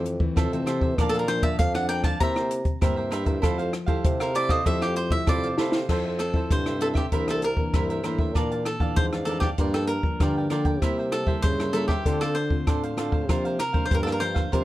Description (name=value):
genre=samba and choro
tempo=97 BPM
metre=4/4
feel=straight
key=F major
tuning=A4 = 440 Hz
part: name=cavaquinho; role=accompaniment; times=0.0-14.6 s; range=D4 to A5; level=-33 LUFS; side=right 5 dB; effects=none
part: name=nylon-string guitar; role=accompaniment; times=0.0-14.6 s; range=F2 to A4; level=-30 LUFS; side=left 2 dB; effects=none
part: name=dark bassoon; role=bass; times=0.0-14.6 s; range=C2 to D3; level=-28 LUFS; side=equal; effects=none
part: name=compact cocktail drum kit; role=drums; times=0.1-14.6 s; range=crash cymbal, hi-hat, kick drum, rim click, snare drum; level=-25 LUFS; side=equal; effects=none
part: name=cavaquinho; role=melody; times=1.1-14.6 s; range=G4 to Bb5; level=-28 LUFS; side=equal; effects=none
room=light reverb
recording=dark, warm production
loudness=-22 LUFS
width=side -15 dB against mid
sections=0.0-5.9 A section; 5.9-14.6 B section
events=cavaquinho solo 0.0-5.9; drum fill 5.6-5.9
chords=0.0 Fmaj7; 1.0 Bbmaj7; 2.2 C7; 3.4 Fmaj9; 7.1 C9; 8.4 Bbmaj7#11; 9.6 Gm7; 10.8 C7; 12.1 Dm7; 13.3 C9sus4